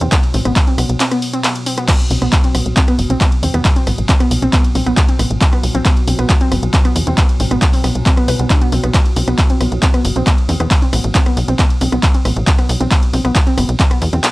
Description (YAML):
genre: driving peak-time techno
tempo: 136 BPM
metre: 4/4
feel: straight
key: unclear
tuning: A4 = 440 Hz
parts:
  - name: warbly dusty pluck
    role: riff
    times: 0.0-14.3 s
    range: B3 to B4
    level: -20 LUFS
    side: equal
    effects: chorus, sidechain pumping, tape echo
  - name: tight sequencer bass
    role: bass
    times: 0.0-14.2 s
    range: F#1 to E2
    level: -17 LUFS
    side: equal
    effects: sidechain pumping
  - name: metallic inharmonic drone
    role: drone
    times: 0.0-14.3 s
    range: B2 to F#3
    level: -26 LUFS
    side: equal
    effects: chorus, built-in reverb, sidechain pumping
  - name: punchy analog drum machine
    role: drums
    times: 0.0-14.3 s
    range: crash cymbal, handclaps, hi-hat, ride cymbal, rim click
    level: -19 LUFS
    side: equal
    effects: sidechain pumping on hats, sidechain pumping on cymbals
  - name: electronic kick drum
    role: drums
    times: 0.1-13.9 s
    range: none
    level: -13 LUFS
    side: equal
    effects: none
room: digital ambience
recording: dry, gritty hardware recording, cassette tape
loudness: -12 LUFS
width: side -20 dB against mid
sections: 0.0-14.3 A section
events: break 1.0-1.9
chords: 0.0 B5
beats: | 0.12 0.56 1.00 1.44 | 1.88 2.33 2.77 3.21 | 3.65 4.09 4.53 4.97 | 5.41 5.86 6.30 6.74 | 7.18 7.62 8.06 8.50 | 8.94 9.38 9.83 10.27 | 10.71 11.15 11.59 12.03 | 12.47 12.91 13.36 13.80 | 14.24